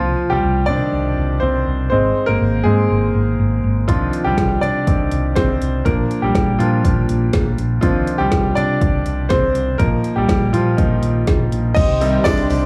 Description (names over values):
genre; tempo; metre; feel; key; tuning
piano-driven pop; 122 BPM; 4/4; straight; C minor; A4 = 440 Hz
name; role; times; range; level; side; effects
bright grand piano; accompaniment; 0.0-12.7 s; C3 to Eb5; -20 LUFS; equal; none
hollow-body short-scale fingered electric bass; bass; 0.0-12.7 s; Ab1 to C3; -22 LUFS; equal; none
deep house drum kit; drums; 3.9-12.6 s; crash cymbal, hi-hat, kick drum, snare drum; -21 LUFS; equal; none
bright large flute ensemble; sustained chords; 11.8-12.7 s; G4 to C6; -30 LUFS; equal; none
tambourine; percussion; 11.8-12.6 s; none; -44 LUFS; equal; none
room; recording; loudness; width
light reverb, small room ambience; none; -17 LUFS; mono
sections
0.0-11.8 A section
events
grand piano solo 0.0-11.8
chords
0.0 Cmadd9; 1.9 Ab; 3.9 Cmadd9; 5.9 Bb; 7.8 Cmadd9; 9.8 Bbsus4; 11.8 Cm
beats
0.43 0.93 1.42 | 1.91 2.40 2.90 3.39 | 3.88 4.38 4.87 5.36 | 5.86 6.35 6.84 7.33 | 7.83 8.32 8.81 9.30 | 9.80 10.29 10.78 11.27 | 11.77 12.26